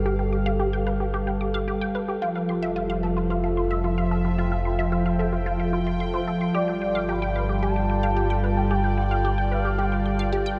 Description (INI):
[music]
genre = ambient, sequencer-driven space music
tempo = 111 BPM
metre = 4/4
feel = straight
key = unclear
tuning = A4 = 441 Hz
[part]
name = sweeping resonant pad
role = sustained chords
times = 0.0-10.6 s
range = F3 to G5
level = -28 LUFS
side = equal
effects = chorus
[part]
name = round analog bass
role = bass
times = 0.0-10.6 s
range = F1 to G1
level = -29 LUFS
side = equal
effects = tube saturation
[part]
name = resonant blip pluck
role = riff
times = 0.1-10.6 s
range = F4 to D6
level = -32 LUFS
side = equal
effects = phaser, tape echo
[part]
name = expressive portamento lead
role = melody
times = 6.5-10.6 s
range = D5 to B5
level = -31 LUFS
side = equal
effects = analog chorus, tape echo
[sound]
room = wet huge ambient reverb, RT60 7.1 s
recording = dark, warm production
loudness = -24 LUFS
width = mono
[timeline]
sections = 0.0-10.6 A section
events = none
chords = 0.0 G7; 2.2 Fmaj7; 6.5 G7